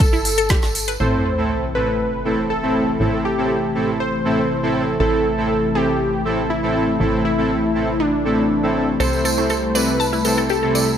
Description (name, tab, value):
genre	progressive house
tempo	120 BPM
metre	4/4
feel	straight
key	A minor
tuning	A4 = 440 Hz
part	plucky unison lead	melody	0.0-11.0 s	D4 to C5	-22 LUFS	equal	sidechain pumping, tape echo
part	glassy wavetable pluck	arpeggios	0.0-1.0, 9.0-10.8 s	A3 to A5	-24 LUFS	left 2 dB	chorus, sidechain pumping, tape echo
part	plucky analog bass	bass	0.0-11.0 s	G1 to C2	-28 LUFS	equal	sidechain pumping
part	deep house drum kit	drums	0.0-1.1 s	crash cymbal, hi-hat, snare drum	-23 LUFS	equal	low-pass filter on hats, low-pass filter on snare, low-pass filter on cymbals
part	electronic kick drum	drums	0.0-0.6 s	none	-16 LUFS	equal	none
part	tambourine	percussion	0.0-1.0, 9.0-11.0 s	none	-26 LUFS	right 3 dB	none
part	airy breathy pad	sustained chords	1.0-11.0 s	C3 to E4	-24 LUFS	left 2 dB	chorus, sidechain pumping
part	soft supersaw	stabs	1.0-10.8 s	A2 to A4	-20 LUFS	right 1 dB	sidechain pumping
part	sub drop	sound effects	1.0-3.0 s	none	-27 LUFS	equal	none
room	moderate recital hall reverb, RT60 1.6 s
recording	faint mains hum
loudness	-17 LUFS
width	side -9 dB against mid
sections	0.0-1.0 A section; 1.0-11.0 B section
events	impact 1.0-3.0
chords	0.0 Gsus2; 1.0 Am; 9.0 C6